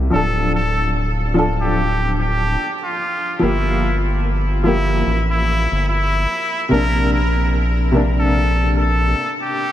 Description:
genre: trip hop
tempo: 73 BPM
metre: 4/4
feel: swing 60% on 16ths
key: D minor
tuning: A4 = 440 Hz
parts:
  - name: felt-muted upright piano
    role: accompaniment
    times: 0.0-9.7 s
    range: C3 to A4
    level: -21 LUFS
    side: equal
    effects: tremolo, tape echo
  - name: round analog bass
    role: bass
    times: 0.0-9.1 s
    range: D1 to C2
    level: -18 LUFS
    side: equal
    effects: none
  - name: trumpet with straight mute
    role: melody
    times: 0.1-9.7 s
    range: E4 to Bb4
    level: -21 LUFS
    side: equal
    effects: vintage 12-bit sampler grit, tape echo
room: moderate huge ambient reverb, RT60 7.4 s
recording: dreamy mix soaked in reverb, vinyl crackle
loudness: -16 LUFS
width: side -12 dB against mid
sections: 0.0-9.7 A section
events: none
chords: 0.1 Dm; 3.4 Gm7; 6.7 Bbadd9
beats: | 0.13 0.95 1.77 2.60 | 3.42 4.24 5.06 5.88 | 6.71 7.53 8.35 9.17

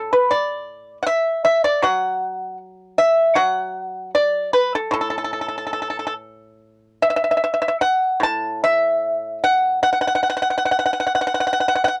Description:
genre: chinese traditional, Chinese solo plucked strings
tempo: 69-80 BPM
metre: 4/4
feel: rubato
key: unclear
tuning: A4 = 440 Hz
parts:
  - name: pipa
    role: solo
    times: 0.0-11.9 s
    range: A2 to A5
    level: -20 LUFS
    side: equal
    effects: cassette tape
room: light reverb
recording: home recording on cassette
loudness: -20 LUFS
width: mono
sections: 0.0-12.0 A section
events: none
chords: none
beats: | 0.34 1.09 1.85 2.62 | 3.38 4.15 4.93 5.76 | 6.61 7.42 8.22 9.02 | 9.81 10.58 11.34

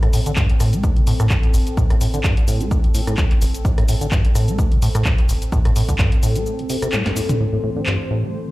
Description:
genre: acid house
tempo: 128 BPM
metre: 4/4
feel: swing 55% on 16ths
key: A minor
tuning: A4 = 440 Hz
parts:
  - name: liquid acid bass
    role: riff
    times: 0.0-8.5 s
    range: A1 to A3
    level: -21 LUFS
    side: equal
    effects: phaser, overdrive, tape echo
  - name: punchy analog drum machine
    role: drums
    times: 0.0-8.0 s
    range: cabasa, handclaps, hi-hat, rim click, snare drum, toms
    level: -26 LUFS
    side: equal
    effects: none
  - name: warbly tape-like pad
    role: texture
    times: 0.0-8.5 s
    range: C4 to G5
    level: -29 LUFS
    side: left 1 dB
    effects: chorus, built-in reverb, phaser, sidechain pumping
  - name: electronic kick drum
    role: drums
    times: 0.4-6.1 s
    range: none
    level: -17 LUFS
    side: equal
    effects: none
  - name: lush unison pad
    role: sustained chords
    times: 7.4-8.5 s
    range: E3 to C5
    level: -28 LUFS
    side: equal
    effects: chorus, sidechain pumping
room: digital ambience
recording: played on a big sound system in a bare room, large studio reverb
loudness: -16 LUFS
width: side -18 dB against mid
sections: 0.0-7.4 A section; 7.4-8.5 B section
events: break 6.5-7.4; drum fill 6.9-7.4; band accent 6.9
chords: 0.0 Am7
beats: 0.37 0.84 1.30 | 1.77 2.24 2.71 3.18 | 3.65 4.12 4.59 5.05 | 5.52 5.99 6.46 6.93 | 7.40 7.87 8.34

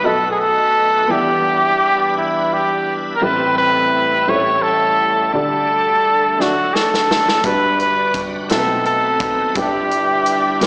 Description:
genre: slow gospel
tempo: 57 BPM (dotted quarters)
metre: 6/8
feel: straight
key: unclear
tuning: A4 = 440 Hz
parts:
  - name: warm trumpet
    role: melody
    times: 0.0-10.7 s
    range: E4 to C#5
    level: -15 LUFS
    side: equal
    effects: slapback echo, plate reverb
  - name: warm upright piano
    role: accompaniment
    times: 0.0-10.7 s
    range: G1 to D#5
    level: -22 LUFS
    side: equal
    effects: plate reverb, slapback echo
  - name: bright tonewheel organ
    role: sustained chords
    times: 0.0-10.7 s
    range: E3 to B4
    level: -26 LUFS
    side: equal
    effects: overdrive, chorus vibrato, slow rotary speaker, plate reverb
  - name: natural country drum kit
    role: drums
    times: 6.4-10.7 s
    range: hi-hat, kick drum, snare drum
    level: -20 LUFS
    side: equal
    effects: none
room: moderate club reverb, RT60 0.7 s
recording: live gig heard through the venue's PA, recital hall reverb, small speaker sound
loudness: -13 LUFS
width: side -29 dB against mid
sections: 0.0-10.7 A section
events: drum fill 6.4-7.4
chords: 0.0 B7; 1.1 Em7; 3.2 Am7; 4.3 A7; 5.3 Dsus4; 6.4 D; 7.4 Gmaj7; 8.5 B7b9; 9.6 Em7/G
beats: 0.03 | 1.09 2.15 | 3.21 4.26 | 5.32 6.38 | 7.44 8.50 | 9.56 10.62

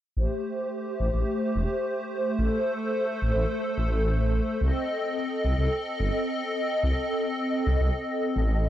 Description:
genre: IDM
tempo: 108 BPM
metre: 4/4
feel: straight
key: unclear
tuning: A4 = 440 Hz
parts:
  - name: hollow soft pad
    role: sustained chords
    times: 0.2-8.7 s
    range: A3 to Eb5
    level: -27 LUFS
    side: equal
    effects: ensemble chorus
  - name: dark detuned saw bass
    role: bass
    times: 0.2-8.7 s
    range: E1 to C2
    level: -25 LUFS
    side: equal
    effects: none
room: digital ambience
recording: dry, gritty hardware recording, transformer saturation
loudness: -24 LUFS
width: side -12 dB against mid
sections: 0.2-8.7 A section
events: filter sweep on detuned saw bass 0.2-8.7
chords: 0.2 Am7; 4.6 Cm6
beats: | 0.17 0.72 1.28 1.83 | 2.39 2.95 3.50 4.06 | 4.61 5.17 5.72 6.28 | 6.83 7.39 7.95 8.50

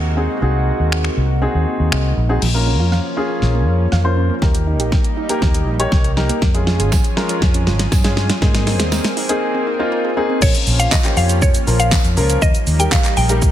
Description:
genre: dance-pop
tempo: 120 BPM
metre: 4/4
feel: straight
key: Bb dorian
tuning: A4 = 440 Hz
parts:
  - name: lush unison pad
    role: sustained chords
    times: 0.0-13.5 s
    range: C3 to Ab4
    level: -25 LUFS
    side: equal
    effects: chorus, sidechain pumping
  - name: vintage muted fingered electric bass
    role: bass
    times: 0.0-13.5 s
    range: Ab1 to Ab2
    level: -17 LUFS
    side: equal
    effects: sidechain pumping
  - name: dark baby grand piano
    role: accompaniment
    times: 0.2-13.5 s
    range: F3 to Eb5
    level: -22 LUFS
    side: left 1 dB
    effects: sidechain pumping
  - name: pop drum kit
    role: drums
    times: 0.9-13.5 s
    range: crash cymbal, finger snaps, handclaps, hi-hat, kick drum, shaker, snare drum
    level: -17 LUFS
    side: equal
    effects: soft clipping on snare
  - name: soft round pluck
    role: arpeggios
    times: 2.4-10.4 s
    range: F3 to Ab5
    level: -28 LUFS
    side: right 5 dB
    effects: chorus, sidechain pumping, ping-pong delay
  - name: tambourine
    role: percussion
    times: 6.9-13.0 s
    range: none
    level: -32 LUFS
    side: right 8 dB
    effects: none
  - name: mallet-like synth pluck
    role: melody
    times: 10.4-13.3 s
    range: Db5 to G5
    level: -21 LUFS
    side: equal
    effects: chorus, sidechain pumping
room: light reverb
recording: dense, heavily limited modern master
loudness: -14 LUFS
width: side -11 dB against mid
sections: 0.0-2.4 A section; 2.4-10.4 B section; 10.4-13.5 C section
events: kick muted 0.4-2.4; grand piano fill 1.7-2.4; build-up 2.4-10.4; drum fill 2.4-9.4; drop 10.4-13.5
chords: 0.0 Ab7/C; 2.4 Bbm; 4.4 Eb; 6.4 Db; 8.4 Abadd9; 10.4 Bbm; 12.4 Eb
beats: | 0.42 0.92 1.42 1.92 | 2.42 2.92 3.42 3.92 | 4.42 4.92 5.42 5.92 | 6.42 6.92 7.42 7.92 | 8.42 8.92 9.42 9.92 | 10.42 10.92 11.42 11.92 | 12.42 12.92 13.42

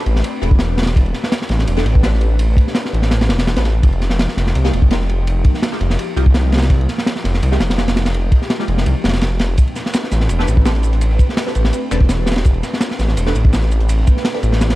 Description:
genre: drum and bass, jungle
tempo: 167 BPM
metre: 4/4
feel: straight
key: unclear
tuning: A4 = 439 Hz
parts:
  - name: airy breathy pad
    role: sustained chords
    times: 0.0-14.8 s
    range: F3 to B4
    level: -26 LUFS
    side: equal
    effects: chorus, phaser, vintage 12-bit sampler grit
  - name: filtered dub chord stab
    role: stabs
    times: 0.0-14.4 s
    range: Ab3 to B4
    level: -27 LUFS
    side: left 1 dB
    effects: phaser, analog chorus, dub echo
  - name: detuned saw bass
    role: bass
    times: 0.1-14.8 s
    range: E1 to C2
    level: -16 LUFS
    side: equal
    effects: none
  - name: crunchy breakbeat drum kit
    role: drums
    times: 0.1-14.8 s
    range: kick drum, ride cymbal, snare drum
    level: -16 LUFS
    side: equal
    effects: none
  - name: dusty soul sampler-style drum kit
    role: drums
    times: 9.6-14.7 s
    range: hi-hat, shaker, snare drum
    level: -33 LUFS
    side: right 2 dB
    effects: high-pass filter on perc, high-pass filter on snare, high-pass filter on hats
room: small room ambience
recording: dark, warm production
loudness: -13 LUFS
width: side -17 dB against mid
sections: 0.0-14.8 A section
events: none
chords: 0.0 Am11; 3.8 Fm11; 9.6 Am11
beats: 0.24 0.60 | 0.96 1.31 1.67 2.03 | 2.39 2.75 3.11 3.47 | 3.83 4.19 4.55 4.91 | 5.27 5.63 5.99 6.34 | 6.70 7.06 7.42 7.78 | 8.14 8.50 8.86 9.22 | 9.58 9.94 10.30 10.66 | 11.02 11.38 11.73 12.09 | 12.45 12.81 13.17 13.53 | 13.89 14.25 14.61

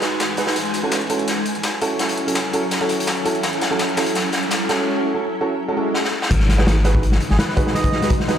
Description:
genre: drum and bass, jungle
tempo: 167 BPM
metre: 4/4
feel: straight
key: unclear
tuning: A4 = 442 Hz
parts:
  - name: granular cloud pad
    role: sustained chords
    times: 0.0-8.4 s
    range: F#3 to B4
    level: -26 LUFS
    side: left 2 dB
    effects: built-in reverb
  - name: warm concert grand piano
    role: stabs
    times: 0.0-8.4 s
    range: C#4 to B4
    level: -23 LUFS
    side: right 3 dB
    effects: dub echo
  - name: soft dub sub bass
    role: bass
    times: 0.0-7.4 s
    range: D#1 to A1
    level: -21 LUFS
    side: equal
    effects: high-pass filter
  - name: breakbeat sampler-style drum kit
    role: drums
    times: 0.0-4.8 s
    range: hi-hat, snare drum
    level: -29 LUFS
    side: left 1 dB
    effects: high-pass filter on hats, high-pass filter on snare
  - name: raw garage drum kit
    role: drums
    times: 0.0-8.4 s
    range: crash cymbal, hi-hat, kick drum, snare drum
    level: -21 LUFS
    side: left 1 dB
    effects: high-pass filter on kick, high-pass filter on hats, high-pass filter on cymbals, high-pass filter on snare, high-pass filter on room
  - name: wind-like tuned noise texture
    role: texture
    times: 0.0-8.4 s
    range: D#5 to G#5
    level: -34 LUFS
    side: left 1 dB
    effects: built-in reverb
  - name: riser and swell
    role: sound effects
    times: 2.9-6.3 s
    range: none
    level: -30 LUFS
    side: left 2 dB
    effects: none
  - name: melodica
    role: melody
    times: 7.3-8.1 s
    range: G#4 to D#5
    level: -26 LUFS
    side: right 3 dB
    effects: dub echo
room: light reverb, studio ambience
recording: none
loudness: -17 LUFS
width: side -9 dB against mid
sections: 0.0-6.3 A section; 6.3-8.4 B section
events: build-up 0.0-6.3; drum fill 0.6-4.9, 6.0-6.3; riser 2.9-4.9; swell 5.7-6.3; drop 6.3-8.4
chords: 0.0 G#m7; 0.6 F#m7; 6.3 G#m7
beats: 0.20 | 0.56 0.92 1.28 1.64 | 2.00 2.36 2.72 3.08 | 3.44 3.79 4.15 4.51 | 4.87 5.23 5.59 5.95 | 6.31 6.67 7.03 7.39 | 7.75 8.11

